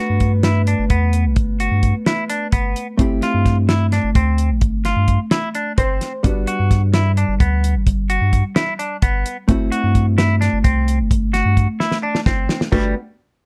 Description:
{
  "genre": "progressive instrumental, band music in an uneven meter",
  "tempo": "259 BPM (eighths)",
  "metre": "7/8",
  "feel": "straight",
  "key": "G major",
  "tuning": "A4 = 440 Hz",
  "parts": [
    { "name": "vintage hollow-body jazz guitar", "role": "accompaniment", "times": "0.0-12.9 s", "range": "G3 to C5", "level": "-25 LUFS", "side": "equal", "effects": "none" },
    { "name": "clean electric guitar", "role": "arpeggios", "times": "0.0-12.9 s", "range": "G3 to F#4", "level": "-25 LUFS", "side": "equal", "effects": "none" },
    { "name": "pure sine sub bass", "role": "bass", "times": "0.1-12.9 s", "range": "F#1 to G2", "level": "-20 LUFS", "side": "equal", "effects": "none" },
    { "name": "damped 70s drum kit", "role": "drums", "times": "0.2-12.8 s", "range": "crash cymbal, hi-hat, kick drum, snare drum", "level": "-21 LUFS", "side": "equal", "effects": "none" }
  ],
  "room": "light reverb",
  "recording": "dark, warm production",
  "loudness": "-18 LUFS",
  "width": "mono",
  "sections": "0.0-12.7 A section",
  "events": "hollow-body jazz guitar fill 5.5-6.2; drum fill 11.8-12.7",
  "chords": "0.0 Gmaj7; 3.0 Fmaj7/G; 6.2 Em7/G (rootless); 9.5 D7 (rootless); 12.7 Gmaj7"
}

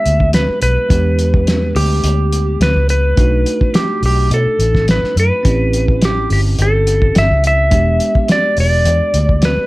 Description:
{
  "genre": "straight-eighth soul blues",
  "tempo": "106 BPM",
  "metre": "4/4",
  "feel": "straight",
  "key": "unclear",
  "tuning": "A4 = 441 Hz",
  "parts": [
    { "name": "clean lap steel guitar", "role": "melody", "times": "0.0-9.7 s", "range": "G4 to E5", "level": "-16 LUFS", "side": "equal", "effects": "none" },
    { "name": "bell-like tine electric piano", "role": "accompaniment", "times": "0.0-9.7 s", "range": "G#3 to G4", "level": "-23 LUFS", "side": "right 3 dB", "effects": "wide subtle chorus" },
    { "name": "vintage muted fingered electric bass", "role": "bass", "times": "0.1-9.6 s", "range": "E1 to B2", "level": "-15 LUFS", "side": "equal", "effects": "none" },
    { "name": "cloth-damped thuddy drum kit", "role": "drums", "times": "0.1-9.6 s", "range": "hi-hat, kick drum, snare drum", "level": "-17 LUFS", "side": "equal", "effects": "none" }
  ],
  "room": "small room ambience",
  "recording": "none",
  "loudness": "-11 LUFS",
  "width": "side -19 dB against mid",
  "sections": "0.0-9.7 A section",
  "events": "none",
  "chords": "0.0 E7#9; 3.2 B7#9; 5.4 A7#9; 7.7 E7#9"
}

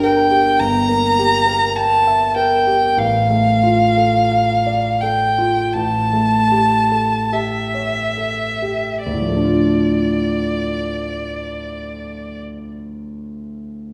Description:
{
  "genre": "classical, romantic duo for violin and grand piano",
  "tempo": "34-54 BPM",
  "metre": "4/4",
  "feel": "rubato",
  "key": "D minor",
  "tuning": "A4 = 439 Hz",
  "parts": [
    { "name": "rich violin", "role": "melody", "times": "0.0-12.4 s", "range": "D5 to Bb5", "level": "-19 LUFS", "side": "equal", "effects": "none" },
    { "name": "clear concert grand piano", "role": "accompaniment", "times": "0.0-13.9 s", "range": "G1 to G5", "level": "-22 LUFS", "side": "equal", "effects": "none" }
  ],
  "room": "wet recital hall reverb, RT60 1.4 s",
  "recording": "heard from further back in the room",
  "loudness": "-17 LUFS",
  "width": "mono",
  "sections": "0.0-9.0 A section; 9.0-13.9 B section",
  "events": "slowing down 0.0-9.0",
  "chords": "0.0 Gm; 0.6 Edim/G; 3.0 Dm/A; 5.7 A7; 9.0 Dm"
}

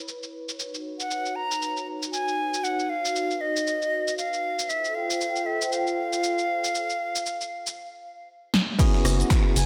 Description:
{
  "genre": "deep house",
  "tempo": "117 BPM",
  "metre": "4/4",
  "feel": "swing 58% on 16ths",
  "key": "unclear",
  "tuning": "A4 = 437 Hz",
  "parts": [
    { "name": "hollow soft pad", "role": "sustained chords", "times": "0.0-9.7 s", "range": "D#4 to B5", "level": "-34 LUFS", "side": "equal", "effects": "chorus, sidechain pumping" },
    { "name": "punchy analog drum machine", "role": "drums", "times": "0.1-9.7 s", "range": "cabasa, crash cymbal, finger snaps, hi-hat, rim click, snare drum", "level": "-31 LUFS", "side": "equal", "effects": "low-pass filter on perc, low-pass filter on snare, low-pass filter on hats, low-pass filter on cymbals, low-pass filter on room" },
    { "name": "bright silver concert flute", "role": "melody", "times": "1.0-9.7 s", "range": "D#5 to A#5", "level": "-30 LUFS", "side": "equal", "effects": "delay" },
    { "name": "bell-like tine electric piano", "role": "stabs", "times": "8.8-9.6 s", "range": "B3 to G#4", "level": "-30 LUFS", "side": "equal", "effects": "sidechain pumping, delay" },
    { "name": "electronic kick drum", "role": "drums", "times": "8.8-9.4 s", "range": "none", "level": "-23 LUFS", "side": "equal", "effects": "overdrive" },
    { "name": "electronic shaker and snare drum", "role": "drums", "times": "8.8-9.7 s", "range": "none", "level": "-40 LUFS", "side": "equal", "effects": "sidechain pumping on perc, high-pass filter on perc, high-pass filter on snare" },
    { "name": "round analog bass", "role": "bass", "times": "9.0-9.7 s", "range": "F#1", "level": "-25 LUFS", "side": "equal", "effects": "sidechain pumping" }
  ],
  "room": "moderate lush hall reverb, RT60 2.0 s",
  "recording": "bright 1980s-style digital production",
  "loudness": "-26 LUFS",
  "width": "mono",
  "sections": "0.0-8.8 A section",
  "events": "filter sweep on analog synth pad 0.0-8.8; drum fill 8.5",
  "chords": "0.0 Bsus4; 0.6 C#9sus4; 4.7 G9sus4; 8.8 F#9sus4"
}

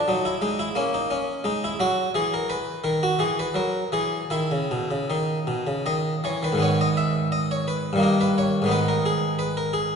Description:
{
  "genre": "classical, baroque-style suite movement for harpsichord",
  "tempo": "77-90 BPM",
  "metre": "3/4",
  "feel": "rubato",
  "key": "G# minor",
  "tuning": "A4 = 440 Hz",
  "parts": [
    { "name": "harpsichord", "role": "solo", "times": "0.0-10.0 s", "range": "G2 to E5", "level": "-22 LUFS", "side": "equal", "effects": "none" }
  ],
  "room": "wet concert hall reverb, RT60 2.2 s",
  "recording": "recorded in a church or concert hall, nothing above 10.5 kHz",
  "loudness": "-22 LUFS",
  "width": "side -6 dB against mid",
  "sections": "0.0-6.6 A section; 6.6-10.0 B section",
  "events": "none",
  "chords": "0.1 F#13; 2.1 Eadd9(#11); 4.3 Badd11; 5.8 C#m9/D#; 6.6 G#m; 8.0 D#/G; 8.7 G#m"
}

